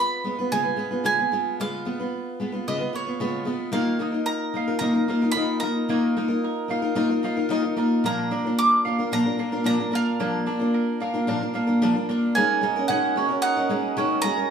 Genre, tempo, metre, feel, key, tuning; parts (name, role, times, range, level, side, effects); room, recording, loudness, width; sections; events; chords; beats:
acoustic folk duo or small band; 111 BPM; 4/4; straight; Eb minor; A4 = 442 Hz
bowl-back mandolin; melody; 0.0-14.5 s; Db5 to D6; -25 LUFS; right 3 dB
picked steel-string acoustic guitar; accompaniment; 0.0-14.5 s; Bb2 to Cb5; -23 LUFS; left 1 dB
mandolin; arpeggios; 3.7-14.5 s; Bb3 to Ab5; -29 LUFS; right 4 dB
wet studio reverb, RT60 0.8 s; heard from further back in the room; -21 LUFS; side -7 dB against mid
0.0-12.3 A section; 12.3-14.5 B section
0.0 Db7; 3.7 Ebsus2; 8.0 Bb; 12.3 Gbadd9/Eb
0.50 1.04 | 1.58 2.12 2.66 3.19 | 3.73 4.27 4.81 5.35 | 5.89 6.43 6.97 7.50 | 8.04 8.58 9.12 9.66 | 10.20 10.74 11.27 11.81 | 12.35 12.89 13.43 13.96 | 14.50